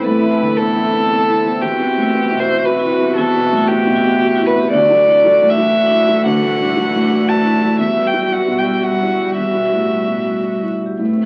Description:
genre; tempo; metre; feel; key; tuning
neoclassical piano and strings; 116 BPM; 3/4; rubato; E minor; A4 = 440 Hz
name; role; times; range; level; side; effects
warm violin; melody; 0.0-10.7 s; G4 to A5; -18 LUFS; equal; none
warm cello; second line; 0.0-11.3 s; E3 to A3; -34 LUFS; equal; none
felt-muted upright piano; accompaniment; 0.0-11.3 s; D2 to A4; -21 LUFS; equal; none
rich viola; accompaniment; 0.0-10.8 s; E4 to F#4; -24 LUFS; equal; none
warm analog pad; sustained chords; 0.0-11.3 s; G3 to F#5; -26 LUFS; equal; chorus
vibraphone with hard mallets; arpeggios; 0.0-10.9 s; D4 to A5; -28 LUFS; equal; none
room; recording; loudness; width
wet club reverb, RT60 0.5 s; very old 78 rpm record, vinyl crackle; -15 LUFS; mono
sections
0.0-11.0 A section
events
none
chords
0.0 Amadd9; 1.6 Emadd9; 4.7 Dadd9; 7.8 Emadd9

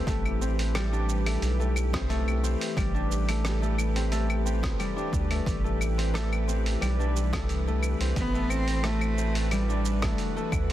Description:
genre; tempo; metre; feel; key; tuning
organic downtempo; 89 BPM; 4/4; straight; A dorian; A4 = 440 Hz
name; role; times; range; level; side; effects
bowed-like drone; sustained chords; 0.0-10.7 s; E3 to B4; -36 LUFS; right 1 dB; built-in reverb, sidechain pumping
concert harp; arpeggios; 0.0-10.7 s; G3 to D4; -32 LUFS; left 4 dB; tape echo
round analog bass; bass; 0.1-10.7 s; A1 to D2; -27 LUFS; equal; none
dusty soul sampler-style drum kit; drums; 0.1-10.7 s; claves, hi-hat, rim click, shaker; -35 LUFS; equal; overdrive
electronic kick drum; drums; 0.1-10.7 s; none; -31 LUFS; equal; overdrive
rich cello; melody; 8.2-10.5 s; G3 to C4; -31 LUFS; right 1 dB; tape echo
room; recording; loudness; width
light reverb; dense, heavily limited modern master; -25 LUFS; side -13 dB against mid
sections
0.0-10.7 A section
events
none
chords
0.0 Am9

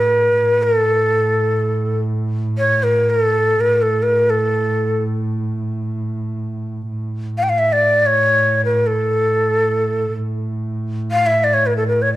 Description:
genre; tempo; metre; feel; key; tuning
Persian modal ensemble; free time; none; none; A dastgah homayun; A4 = 439 Hz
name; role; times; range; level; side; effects
breathy bright ney; melody; 0.0-12.2 s; A4 to G5; -15 LUFS; equal; none
rich double bass; drone; 0.0-12.2 s; A2; -22 LUFS; right 1 dB; none
room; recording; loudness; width
moderate recital hall reverb, RT60 1.4 s; dark, warm production; -15 LUFS; side -15 dB against mid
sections
0.0-6.9 A section; 6.9-12.2 A section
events
none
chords
none

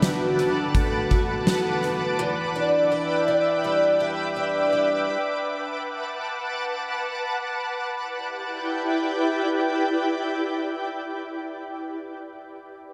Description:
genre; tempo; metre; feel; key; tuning
dream pop; 83 BPM; 4/4; straight; E minor; A4 = 440 Hz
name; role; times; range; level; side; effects
shimmering ambient pad; sustained chords; 0.0-11.4 s; E4 to D6; -28 LUFS; equal; chorus, built-in reverb, tremolo
picked twelve-string acoustic guitar; arpeggios; 0.0-5.7 s; E2 to F#4; -25 LUFS; equal; analog chorus, digital delay
huge arena drum kit; drums; 0.0-2.0 s; hi-hat, kick drum, snare drum; -27 LUFS; equal; none
room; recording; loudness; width
moderate plate reverb, RT60 2.3 s; dark, warm production; -25 LUFS; mono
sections
0.0-8.0 A section; 8.0-10.9 B section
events
none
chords
0.0 D6; 2.2 Em7; 5.1 D6; 8.0 Em7

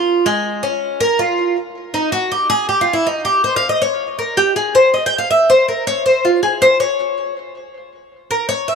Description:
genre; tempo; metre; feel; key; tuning
latin; 160 BPM; 4/4; straight; unclear; A4 = 440 Hz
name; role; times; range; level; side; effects
Cuban tres; solo; 0.0-8.8 s; Ab3 to G5; -14 LUFS; equal; tape echo
room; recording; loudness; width
moderate plate reverb, RT60 3.3 s; dark, warm production; -14 LUFS; side -6 dB against mid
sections
0.0-1.6 A section; 1.6-8.8 B section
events
Cuban tres solo 1.6-8.8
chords
none

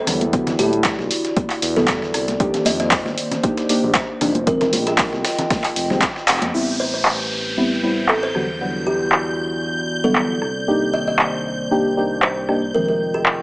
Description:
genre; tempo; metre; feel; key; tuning
deep house; 116 BPM; 4/4; swing 54% on 16ths; unclear; A4 = 439 Hz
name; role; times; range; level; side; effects
kalimba; melody; 0.0-13.4 s; G4 to Eb5; -24 LUFS; equal; tape echo
dark analog pad; sustained chords; 0.0-13.4 s; Eb3 to G5; -27 LUFS; equal; chorus, vintage 12-bit sampler grit, sidechain pumping
deep mellow chord stab; stabs; 0.0-13.4 s; D3 to G4; -22 LUFS; equal; chorus, phaser, vintage 12-bit sampler grit, sidechain pumping, tape echo
smooth synth bass; bass; 0.1-13.4 s; F1 to A2; -28 LUFS; equal; sidechain pumping
dusty soul sampler-style drum kit; drums; 0.1-6.5 s; hi-hat, snare drum; -29 LUFS; equal; high-pass filter on hats, high-pass filter on snare
punchy analog drum machine; drums; 0.1-13.4 s; handclaps, hi-hat, rim click; -20 LUFS; equal; low-pass filter on hats, low-pass filter on snare, low-pass filter on room
congas; percussion; 0.1-6.5 s; none; -27 LUFS; left 1 dB; none
electronic kick drum; drums; 0.3-6.1 s; none; -22 LUFS; equal; none
downlifter; sound effects; 6.5-10.7 s; none; -28 LUFS; equal; none
string machine, violins; texture; 6.5-13.4 s; G6; -29 LUFS; equal; ensemble chorus
room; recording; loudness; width
moderate digital room reverb, RT60 1.2 s; small speaker sound; -17 LUFS; side -24 dB against mid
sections
0.0-6.5 A section; 6.5-13.4 B section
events
drum fill 6.3; band accent 6.3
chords
0.1 Em9; 2.1 Cm9; 4.5 Fm9; 6.5 Am9; 8.3 Em9; 10.4 Cm9; 12.7 Fm9

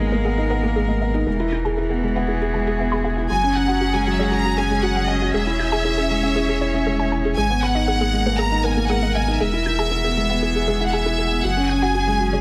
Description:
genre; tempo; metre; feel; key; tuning
electronica; 118 BPM; 4/4; straight; unclear; A4 = 440 Hz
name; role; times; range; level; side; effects
warm string quartet; sustained chords; 0.0-12.4 s; E3 to G#5; -30 LUFS; equal; none
felt-muted upright piano; riff; 0.0-12.4 s; F#3 to G#4; -25 LUFS; equal; delay
warm sub bass; bass; 0.0-12.4 s; E1 to G#1; -26 LUFS; equal; none
warbly dusty pluck; arpeggios; 0.1-12.4 s; F#4 to G6; -32 LUFS; equal; chorus, delay
clear studio violin section; melody; 3.3-12.4 s; D#5 to A#5; -25 LUFS; equal; none
room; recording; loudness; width
moderate scoring stage reverb, RT60 2.0 s, small room ambience; none; -20 LUFS; mono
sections
0.0-12.4 A section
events
none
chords
0.0 G#madd9; 1.3 E; 3.3 F#sus2; 5.3 C#m/E; 7.4 G#madd9; 9.4 E; 11.4 F#sus2

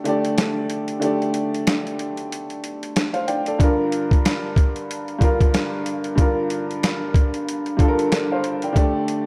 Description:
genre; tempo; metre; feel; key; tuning
hip hop, boom-bap hip-hop; 93 BPM; 4/4; swing 60% on 16ths; G minor; A4 = 440 Hz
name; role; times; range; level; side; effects
warm upright piano; accompaniment; 0.0-9.3 s; G2 to G5; -24 LUFS; equal; cassette tape, high-pass filter, low-pass filter
boom bap sampler-style drum kit; drums; 0.1-9.3 s; hi-hat, kick drum, snare drum; -22 LUFS; equal; none
room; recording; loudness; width
moderate plate reverb, RT60 1.8 s, digital ambience; dreamy mix soaked in reverb; -21 LUFS; mono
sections
0.0-9.3 A section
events
break 0.0-3.6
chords
0.0 Dsus4; 3.6 Gm7; 8.8 Dsus4

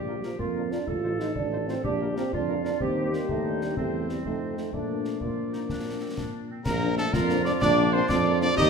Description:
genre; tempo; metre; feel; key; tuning
military-style march for wind band; 125 BPM (dotted quarters); 6/8; straight; Bb major; A4 = 439 Hz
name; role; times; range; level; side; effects
mellow euphonium; second line; 0.0-8.7 s; F3 to F4; -30 LUFS; right 5 dB; none
warm woodwind section; second line; 0.0-8.7 s; C4 to A4; -33 LUFS; left 3 dB; none
warm tuba; bass; 0.0-8.7 s; A1 to Bb2; -30 LUFS; right 2 dB; none
clear cornet; melody; 0.1-8.7 s; A4 to Eb5; -32 LUFS; right 2 dB; none
mellow French horn section; accompaniment; 0.1-8.5 s; F3 to G4; -34 LUFS; left 8 dB; none
concert snare drum, concert bass drum and clash cymbals; drums; 0.2-8.7 s; none; -34 LUFS; left 2 dB; none
mellow piccolo; second line; 6.7-8.7 s; A5 to Eb6; -31 LUFS; left 5 dB; none
mellow trombone section; sustained chords; 6.7-8.7 s; F3 to D4; -32 LUFS; right 4 dB; none
room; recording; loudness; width
moderate recital hall reverb, RT60 1.5 s; recorded in a church or concert hall; -24 LUFS; side -5 dB against mid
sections
0.0-6.7 A section; 6.7-8.7 B section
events
none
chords
0.0 Bb; 0.9 F7/A; 1.8 Bb; 2.8 Cm/Eb; 3.8 C/E; 4.3 F7; 4.7 Bb

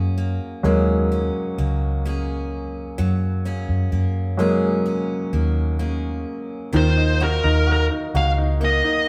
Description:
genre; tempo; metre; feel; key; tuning
pop ballad; 64 BPM; 4/4; straight; unclear; A4 = 441 Hz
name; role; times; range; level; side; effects
picked steel-string acoustic guitar; arpeggios; 0.0-9.1 s; Eb3 to Ab4; -32 LUFS; equal; none
vintage muted fingered electric bass; bass; 0.0-8.8 s; Db2 to Gb2; -24 LUFS; equal; none
bright concert grand piano; accompaniment; 0.6-9.1 s; Eb3 to Gb4; -26 LUFS; equal; none
smooth overdriven lead guitar; melody; 6.8-9.1 s; Bb4 to F5; -24 LUFS; equal; none
room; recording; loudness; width
moderate stone room reverb, RT60 1.4 s; band playing live in one room; -21 LUFS; mono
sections
0.0-6.7 A section; 6.7-9.1 B section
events
grand piano solo 0.0-6.7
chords
0.0 Gbadd9; 6.7 Ebmadd9

